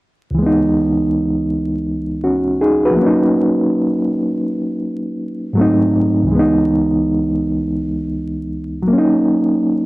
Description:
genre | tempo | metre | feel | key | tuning
hip hop | 81 BPM | 4/4 | swing 66% on 16ths | C# dorian | A4 = 439 Hz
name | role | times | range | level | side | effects
overdriven reed electric piano | accompaniment | 0.3-9.9 s | C#2 to B4 | -14 LUFS | equal | fast tremolo, low-pass filter
room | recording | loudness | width
light reverb | dry, gritty hardware recording, vinyl crackle | -14 LUFS | side -20 dB against mid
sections
0.4-9.9 A section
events
none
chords
0.4 C#m9; 3.0 D#m7; 5.6 G#7b9; 6.3 C#m9; 8.9 D#m7

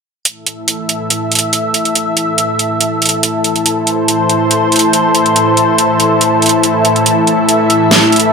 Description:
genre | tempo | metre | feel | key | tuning
heavy wobble dubstep | 141 BPM | 4/4 | half-time | A minor | A4 = 440 Hz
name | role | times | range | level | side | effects
lush unison pad | sustained chords | 0.3-8.3 s | A2 to E5 | -11 LUFS | left 1 dB | chorus
dubstep drum kit | drums | 0.3-8.3 s | hi-hat, snare drum | -12 LUFS | right 2 dB | none
room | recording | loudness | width
wet digital room reverb, RT60 1.0 s | none | -10 LUFS | side -5 dB against mid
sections
0.3-8.3 A section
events
filter sweep on analog synth pad 0.3-8.3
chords
0.3 A5

